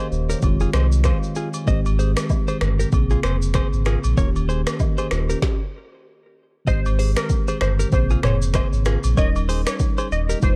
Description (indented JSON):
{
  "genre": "afrobeats",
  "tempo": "96 BPM",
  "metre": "4/4",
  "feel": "swing 58% on 16ths",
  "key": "Ab major",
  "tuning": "A4 = 437 Hz",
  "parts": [
    { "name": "mellow tine electric piano", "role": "accompaniment", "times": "0.0-10.6 s", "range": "Db3 to Ab5", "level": "-29 LUFS", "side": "equal", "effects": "none" },
    { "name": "direct-recorded clean electric guitar", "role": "riff", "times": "0.0-10.4 s", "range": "F4 to Eb5", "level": "-32 LUFS", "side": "equal", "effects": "none" },
    { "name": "sub bass with octave", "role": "bass", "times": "0.1-10.6 s", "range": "Eb1 to C2", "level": "-23 LUFS", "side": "equal", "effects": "none" },
    { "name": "afro-pop drum kit", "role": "drums", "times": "0.1-10.6 s", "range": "finger snaps, hi-hat, kick drum, rim click, shaker, snare drum, toms", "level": "-25 LUFS", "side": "equal", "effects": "overdrive" },
    { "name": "agogo bells and woodblock", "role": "percussion", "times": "0.4-10.6 s", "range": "none", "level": "-38 LUFS", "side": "equal", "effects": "none" },
    { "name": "glassy wavetable pluck", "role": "melody", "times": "6.7-10.6 s", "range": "Bb4 to Eb5", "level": "-31 LUFS", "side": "equal", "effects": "chorus, digital delay" }
  ],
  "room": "little or no reverb",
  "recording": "dark, warm production",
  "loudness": "-21 LUFS",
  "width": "mono",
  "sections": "0.0-6.7 A section; 6.7-10.6 B section",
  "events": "tine electric piano fill 0.4-1.7; stop 5.4-6.7",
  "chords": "0.4 Fm7; 1.7 Abmaj7; 2.9 Bbm9; 4.2 Eb7; 5.4 N.C.; 6.7 Abmaj7; 7.9 Bbm9; 9.2 Eb7"
}